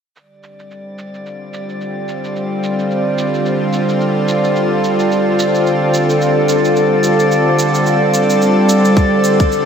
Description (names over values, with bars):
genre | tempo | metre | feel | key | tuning
organic downtempo | 109 BPM | 4/4 | swing 57% on 16ths | unclear | A4 = 440 Hz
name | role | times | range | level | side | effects
bowed-like drone | sustained chords | 1.0-9.7 s | D3 to A4 | -14 LUFS | equal | built-in reverb, sidechain pumping
cabasa | drums | 0.2-9.6 s | none | -27 LUFS | right 3 dB | low-pass filter on perc, studio reverb
drifting glass-harmonics texture | texture | 0.6-9.7 s | D5 | -20 LUFS | right 1 dB | chorus, built-in reverb
electronic kick drum | drums | 9.0-9.5 s | none | -14 LUFS | equal | studio reverb
room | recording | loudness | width
wet lush hall reverb, RT60 1.8 s | dreamy mix soaked in reverb | -12 LUFS | side -7 dB against mid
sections
0.2-9.7 A section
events
none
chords
0.2 G9sus4